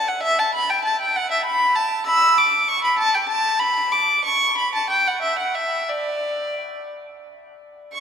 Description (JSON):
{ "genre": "classical, baroque-style suite movement for unaccompanied violin", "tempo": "57-67 BPM (dotted quarters)", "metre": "6/8", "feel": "rubato", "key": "D major", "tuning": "A4 = 440 Hz", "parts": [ { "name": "rich violin", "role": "solo", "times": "0.0-8.0 s", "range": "D5 to E6", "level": "-18 LUFS", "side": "equal", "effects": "none" } ], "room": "wet cathedral reverb, RT60 5.1 s", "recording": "in a vast, echoing space", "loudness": "-17 LUFS", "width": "side -7 dB against mid", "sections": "0.0-7.9 A section", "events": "none", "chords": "none", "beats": "| 0.24 1.16 | 2.06 2.98 | 3.91 4.89 | 5.89 6.92 | 7.94" }